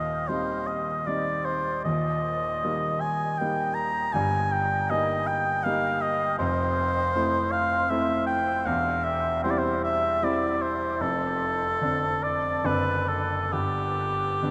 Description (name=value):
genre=classical, romantic duo for oboe and grand piano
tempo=65-81 BPM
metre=3/4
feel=rubato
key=C major from 6.4 s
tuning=A4 = 442 Hz
part: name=warm oboe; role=melody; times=0.0-14.5 s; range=G4 to Bb5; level=-28 LUFS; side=equal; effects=none
part: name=clear concert grand piano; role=accompaniment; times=0.0-14.5 s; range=Eb1 to E4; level=-31 LUFS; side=equal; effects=none
room=wet huge ambient reverb, RT60 8.6 s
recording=in a vast, echoing space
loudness=-26 LUFS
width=mono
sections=0.0-14.5 A section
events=none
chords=0.0 Cm/Eb; 1.9 Eb; 4.1 Eb/G; 6.4 Fmaj7; 8.7 C/E; 11.0 Dm7/F; 12.6 D7/F#; 13.5 G5